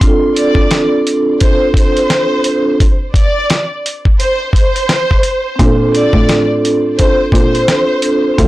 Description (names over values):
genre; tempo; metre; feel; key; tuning
hip hop, boom-bap hip-hop; 86 BPM; 4/4; swing 59% on 16ths; unclear; A4 = 440 Hz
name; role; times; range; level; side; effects
vibraphone with soft mallets; accompaniment; 0.0-8.5 s; C4 to A4; -13 LUFS; right 1 dB; cassette tape, high-pass filter, low-pass filter
dusty soul sampler-style drum kit; drums; 0.0-8.5 s; hi-hat, kick drum, snare drum; -12 LUFS; equal; none
warm symphonic violin section; melody; 0.4-8.3 s; C5 to D5; -16 LUFS; equal; high-pass filter, low-pass filter, tape echo
warm cello; bass; 5.6-8.5 s; D2 to Bb2; -16 LUFS; equal; tube saturation
room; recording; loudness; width
light reverb; blown-out, overdriven recording, overdrive; -10 LUFS; side -17 dB against mid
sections
0.0-8.5 A section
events
none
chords
0.0 F6/C; 2.8 N.C.; 5.6 Bbmaj9